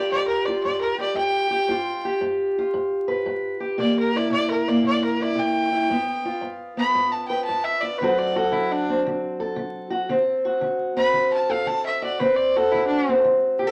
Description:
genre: acoustic country blues, solo or duo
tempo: 114 BPM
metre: 4/4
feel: swing 67% on 8ths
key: unclear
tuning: A4 = 440 Hz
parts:
  - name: clear fiddle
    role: melody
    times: 0.0-13.2 s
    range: D4 to B5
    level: -26 LUFS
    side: equal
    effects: none
  - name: fingerpicked steel-string acoustic guitar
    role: accompaniment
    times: 0.0-13.7 s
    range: G2 to B4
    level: -24 LUFS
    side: equal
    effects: none
room: wet studio reverb, RT60 0.7 s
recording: vinyl crackle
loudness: -23 LUFS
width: mono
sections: 0.0-13.7 A section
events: fiddle solo 0.0-13.7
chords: 0.0 G7; 3.8 C7; 5.9 G7; 8.0 D7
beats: 0.13 0.66 1.18 | 1.71 2.23 2.75 3.28 | 3.81 4.33 4.86 5.38 | 5.91 6.43 6.95 7.48 | 8.00 8.53 9.05 9.57 | 10.10 10.62 11.15 11.67 | 12.19 12.72 13.24

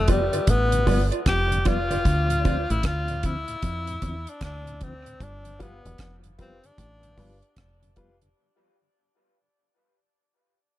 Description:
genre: dub reggae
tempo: 76 BPM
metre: 4/4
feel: swing 63% on 16ths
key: unclear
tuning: A4 = 438 Hz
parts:
  - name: breathy tenor saxophone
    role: melody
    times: 0.0-7.6 s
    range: G3 to G4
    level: -27 LUFS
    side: left 2 dB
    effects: dub echo
  - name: deep dub fingered electric bass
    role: bass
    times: 0.0-8.3 s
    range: E1 to F2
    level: -26 LUFS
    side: equal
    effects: none
  - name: mellow electric guitar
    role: accompaniment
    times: 0.1-2.6 s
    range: F4 to D5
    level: -31 LUFS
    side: right 5 dB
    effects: dub echo
  - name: mellow tonewheel organ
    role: accompaniment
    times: 0.1-8.3 s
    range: D2 to C4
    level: -33 LUFS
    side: left 1 dB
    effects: chorus vibrato, dub echo
  - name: deep reggae drum kit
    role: drums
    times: 0.1-8.4 s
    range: hi-hat, kick drum, rim click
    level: -25 LUFS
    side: equal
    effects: none
  - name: warm upright piano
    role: stabs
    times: 5.6-8.1 s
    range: F4 to B4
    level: -54 LUFS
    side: left 3 dB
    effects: dub echo
room: small room ambience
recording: dark, warm production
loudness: -21 LUFS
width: side -14 dB against mid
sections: 0.0-8.4 A section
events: break 0.0-8.4; fade-out 0.0-8.4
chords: 0.0 G7; 2.1 Dm7; 5.2 G7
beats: 0.48 1.26 | 2.05 2.84 3.63 4.42 | 5.21 6.00 6.79 7.57

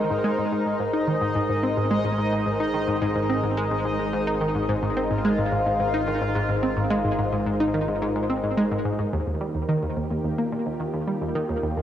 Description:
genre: ambient, sequencer-driven space music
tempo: 108 BPM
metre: 4/4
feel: straight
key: Ab major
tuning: A4 = 440 Hz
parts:
  - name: lush unison pad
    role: sustained chords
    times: 0.0-11.8 s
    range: Eb3 to C5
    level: -26 LUFS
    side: equal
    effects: chorus, cassette tape
  - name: analog pluck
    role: riff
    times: 0.0-11.8 s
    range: Eb2 to Eb4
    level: -25 LUFS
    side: equal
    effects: chorus, cassette tape, tape echo
  - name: analog drone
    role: bass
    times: 1.2-11.8 s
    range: Ab1 to Eb2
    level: -33 LUFS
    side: equal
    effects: chorus
  - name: bubbling stepped-filter texture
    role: texture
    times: 0.0-9.2 s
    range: Eb4 to Eb5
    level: -30 LUFS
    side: left 2 dB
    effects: chorus, built-in reverb, cassette tape
  - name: soft round pluck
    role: arpeggios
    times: 9.1-11.8 s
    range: none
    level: barely audible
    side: none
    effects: none
room: wet spring reverb, RT60 1.8 s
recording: home recording on cassette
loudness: -22 LUFS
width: side -10 dB against mid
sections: 0.0-9.1 A section; 9.1-11.8 B section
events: none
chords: 0.0 Ab; 9.1 Eb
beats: | 0.24 0.80 1.35 1.91 | 2.47 3.02 3.58 4.13 | 4.69 5.24 5.80 6.35 | 6.91 7.47 8.02 8.58 | 9.13 9.69 10.24 10.80 | 11.35

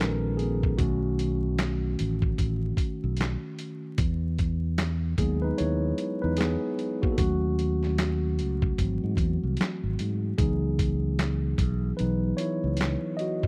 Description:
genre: R&B, neo-soul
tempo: 75 BPM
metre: 4/4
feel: swing 59% on 16ths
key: B major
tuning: A4 = 440 Hz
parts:
  - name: mellow tine electric piano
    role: accompaniment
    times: 0.0-13.5 s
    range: D#3 to D#5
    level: -31 LUFS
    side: equal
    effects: none
  - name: fingered electric bass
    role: bass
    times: 0.0-13.0 s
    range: G#1 to G#2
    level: -30 LUFS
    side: equal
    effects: none
  - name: dusty soul sampler-style drum kit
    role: drums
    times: 0.0-13.5 s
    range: handclaps, hi-hat, kick drum, snare drum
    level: -31 LUFS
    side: equal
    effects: none
room: little or no reverb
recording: dry, close 1970s-style studio recording, vinyl crackle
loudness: -27 LUFS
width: mono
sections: 0.0-13.5 A section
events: tine electric piano solo 0.0-13.5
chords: 0.0 B69; 0.8 B9; 4.0 Emaj9; 7.2 D#m7b5; 8.8 G#7b13; 10.4 C#m11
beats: | 0.78 1.58 2.38 3.18 | 3.98 4.78 5.58 6.38 | 7.18 7.98 8.78 9.58 | 10.38 11.18 11.98 12.78

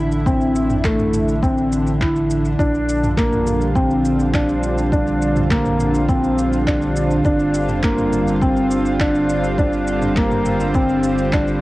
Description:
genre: piano and strings electronica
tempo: 103 BPM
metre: 4/4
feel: straight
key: G dorian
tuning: A4 = 441 Hz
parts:
  - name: lush unison pad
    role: sustained chords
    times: 0.0-11.6 s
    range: D3 to F4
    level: -20 LUFS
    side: right 1 dB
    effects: chorus, sidechain pumping, cassette tape
  - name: felt-muted upright piano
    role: riff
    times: 0.0-11.6 s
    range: A3 to E4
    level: -20 LUFS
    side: equal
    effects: cassette tape, analog delay
  - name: warm sub bass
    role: bass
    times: 0.0-11.6 s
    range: G1 to Bb1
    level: -25 LUFS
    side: equal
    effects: tube saturation, sidechain pumping
  - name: deep house drum kit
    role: drums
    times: 0.1-11.6 s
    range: handclaps, shaker, toms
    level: -28 LUFS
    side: equal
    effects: cassette tape
  - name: electronic kick drum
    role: drums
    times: 0.3-11.4 s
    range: none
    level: -21 LUFS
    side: equal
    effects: cassette tape
room: light reverb, digital ambience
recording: home recording on cassette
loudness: -15 LUFS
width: side -18 dB against mid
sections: 0.0-11.6 A section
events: none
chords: 0.0 Am; 2.6 Bb; 7.3 Gm7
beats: | 0.26 0.85 1.43 2.01 | 2.59 3.18 3.76 4.34 | 4.92 5.51 6.09 6.67 | 7.25 7.84 8.42 9.00 | 9.58 10.17 10.75 11.33

